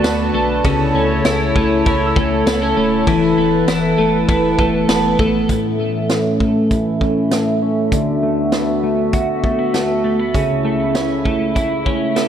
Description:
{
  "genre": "dream pop",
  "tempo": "99 BPM",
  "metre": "4/4",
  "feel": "straight",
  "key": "A major",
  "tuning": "A4 = 440 Hz",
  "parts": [
    { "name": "hollow soft pad", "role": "sustained chords", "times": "0.0-12.3 s", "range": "C#2 to A5", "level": "-19 LUFS", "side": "right 2 dB", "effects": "chorus, low-pass filter" },
    { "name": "twelve-string electric guitar", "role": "arpeggios", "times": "0.0-12.3 s", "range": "A2 to F#4", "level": "-17 LUFS", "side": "left 2 dB", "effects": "analog chorus, low-pass filter, digital delay" },
    { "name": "warm sub bass", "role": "bass", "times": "0.0-5.5 s", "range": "D1 to D2", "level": "-26 LUFS", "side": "equal", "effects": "none" },
    { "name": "raw garage drum kit", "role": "drums", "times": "0.0-12.3 s", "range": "hi-hat, kick drum, ride cymbal, snare drum, tambourine", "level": "-21 LUFS", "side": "equal", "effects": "none" },
    { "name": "celesta", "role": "texture", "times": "1.9-3.5 s", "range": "B5 to E6", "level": "-28 LUFS", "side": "right 1 dB", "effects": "digital delay" }
  ],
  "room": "moderate plate reverb, RT60 2.2 s",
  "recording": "none",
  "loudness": "-14 LUFS",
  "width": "side -9 dB against mid",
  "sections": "0.0-5.5 A section; 5.5-12.3 B section",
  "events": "filter sweep 5.5-12.3",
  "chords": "0.0 D6; 0.6 A/C#; 3.1 Esus4; 5.5 A; 7.9 D6; 10.3 A/C#"
}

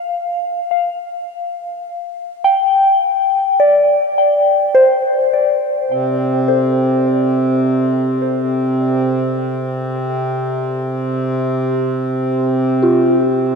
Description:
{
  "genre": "ambient",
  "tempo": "52 BPM",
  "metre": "3/4",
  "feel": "straight",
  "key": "unclear",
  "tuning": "A4 = 439 Hz",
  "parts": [
    { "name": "soft synth bell", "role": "arpeggios", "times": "0.0-13.6 s", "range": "F4 to G5", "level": "-15 LUFS", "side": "left 2 dB", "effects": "chorus, tremolo, ping-pong delay" },
    { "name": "hand-pumped harmonium", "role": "drone", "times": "5.9-13.6 s", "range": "C3", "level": "-16 LUFS", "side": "right 1 dB", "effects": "none" }
  ],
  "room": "wet huge ambient reverb, RT60 8.0 s",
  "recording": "dark, warm production",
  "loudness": "-14 LUFS",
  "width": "side -5 dB against mid",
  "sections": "0.0-5.9 A section; 5.9-13.6 B section",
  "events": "fade-in on synth bell 5.9-13.6",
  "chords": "0.0 G5; 5.9 Am/C; 12.8 Fsus2"
}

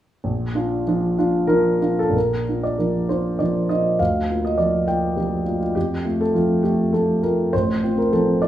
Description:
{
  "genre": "classical, romantic character piece for solo piano",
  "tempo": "84-104 BPM",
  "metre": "3/4",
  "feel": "rubato",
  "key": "Bb major",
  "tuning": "A4 = 440 Hz",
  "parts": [
    { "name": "warm concert grand piano", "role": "solo", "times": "0.2-8.5 s", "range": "A1 to G5", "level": "-18 LUFS", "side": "equal", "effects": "none" }
  ],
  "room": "moderate large studio reverb, RT60 0.9 s",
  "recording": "studio reverb",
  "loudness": "-18 LUFS",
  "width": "side -12 dB against mid",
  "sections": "0.2-2.1 A section; 2.1-8.5 B section",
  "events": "none",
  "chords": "0.2 Bb; 4.0 Bb/D; 5.8 F; 7.5 F/A"
}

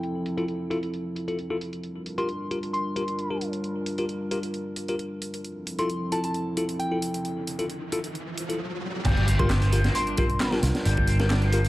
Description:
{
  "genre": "breakbeat, breaks",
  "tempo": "133 BPM",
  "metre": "4/4",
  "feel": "straight",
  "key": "G dorian",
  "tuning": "A4 = 442 Hz",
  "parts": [
    { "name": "dark analog pad", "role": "sustained chords", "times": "0.0-11.7 s", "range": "F3 to Bb4", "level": "-32 LUFS", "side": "right 1 dB", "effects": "chorus, sidechain pumping" },
    { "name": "punchy analog drum machine", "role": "drums", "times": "0.0-11.7 s", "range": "handclaps, hi-hat", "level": "-37 LUFS", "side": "right 1 dB", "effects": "overdrive" },
    { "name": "bell-like tine electric piano", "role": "stabs", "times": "0.4-11.6 s", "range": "E4 to Bb4", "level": "-32 LUFS", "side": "left 2 dB", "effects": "digital delay" },
    { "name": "soft synth bell", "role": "melody", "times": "2.2-10.6 s", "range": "G5 to C6", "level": "-33 LUFS", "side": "left 1 dB", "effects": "chorus, old record sound, digital delay" },
    { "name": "riser and impact", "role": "sound effects", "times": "7.2-10.9 s", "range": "none", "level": "-34 LUFS", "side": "equal", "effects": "none" },
    { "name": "raw garage guitar", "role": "riff", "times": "9.0-11.7 s", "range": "F3 to D4", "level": "-31 LUFS", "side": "left 1 dB", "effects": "overdrive, vintage 12-bit sampler grit" },
    { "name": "crunchy breakbeat drum kit", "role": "drums", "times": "9.0-11.7 s", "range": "crash cymbal, hi-hat, kick drum, snare drum", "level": "-27 LUFS", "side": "equal", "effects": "none" },
    { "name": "picked electric bass", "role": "bass", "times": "9.1-11.7 s", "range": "G1 to C2", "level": "-22 LUFS", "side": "equal", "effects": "none" }
  ],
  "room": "light reverb, small room ambience",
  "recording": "vinyl crackle, low-pass filter",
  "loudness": "-25 LUFS",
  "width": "side -17 dB against mid",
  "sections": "0.0-9.1 A section; 9.1-11.7 B section",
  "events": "filter sweep 0.0-9.1; riser 7.2-9.1; drop 9.1-11.7; impact 9.1-10.9",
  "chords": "0.0 Fmaj7; 1.8 Gm7; 5.4 Fmaj7; 9.1 Gm7"
}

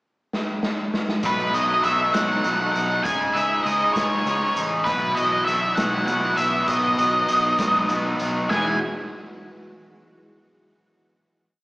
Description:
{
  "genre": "indie rock",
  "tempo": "66 BPM (dotted quarters)",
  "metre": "6/8",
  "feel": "straight",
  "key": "E major",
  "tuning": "A4 = 437 Hz",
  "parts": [
    { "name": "raw garage drum kit", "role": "drums", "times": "0.3-8.6 s", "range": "hi-hat, kick drum, snare drum", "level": "-28 LUFS", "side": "equal", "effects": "none" },
    { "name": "raw garage guitar", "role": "riff", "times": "1.2-8.8 s", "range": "E3 to G#4", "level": "-26 LUFS", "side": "left 1 dB", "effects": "overdrive, slapback echo" },
    { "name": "raw garage guitar", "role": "riff", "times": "1.2-8.7 s", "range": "B2 to E4", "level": "-28 LUFS", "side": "right 2 dB", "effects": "overdrive, analog chorus, slapback echo" },
    { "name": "picked electric bass", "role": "bass", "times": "1.2-8.8 s", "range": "E1 to C#2", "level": "-31 LUFS", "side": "equal", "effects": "none" },
    { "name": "octave-fuzz lead guitar", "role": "melody", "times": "1.3-8.8 s", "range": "B4 to G#5", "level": "-21 LUFS", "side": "equal", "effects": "distortion, slapback echo" },
    { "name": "string machine, full ensemble", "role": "sustained chords", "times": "4.9-8.8 s", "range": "D#3 to F#4", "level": "-35 LUFS", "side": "equal", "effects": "phaser, ensemble chorus" }
  ],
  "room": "light reverb",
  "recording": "live gig heard through the venue's PA, recital hall reverb, small speaker sound",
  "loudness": "-19 LUFS",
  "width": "side -23 dB against mid",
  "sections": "0.0-1.2 pickup bar; 1.2-8.5 pre-chorus; 8.5-10.3 final chord",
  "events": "drum fill 0.3-1.2",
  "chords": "0.0 N.C.; 1.2 B7; 3.1 C#sus2; 4.9 Esus2/B; 6.7 B; 8.5 Eadd9"
}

